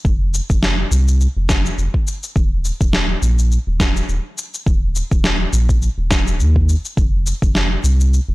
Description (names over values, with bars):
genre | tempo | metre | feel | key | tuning
organic downtempo | 104 BPM | 4/4 | swing 56% on 16ths | unclear | A4 = 440 Hz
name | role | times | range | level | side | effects
round analog bass | bass | 0.0-8.3 s | Eb1 to Eb2 | -16 LUFS | equal | tube saturation
electronic kick drum | drums | 0.0-7.5 s | none | -17 LUFS | equal | none
electronic shaker and snare drum | drums | 0.1-8.3 s | none | -21 LUFS | equal | none
room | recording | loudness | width
little or no reverb | blown-out, overdriven recording, overdrive | -15 LUFS | side -20 dB against mid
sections
0.0-8.3 A section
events
none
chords
none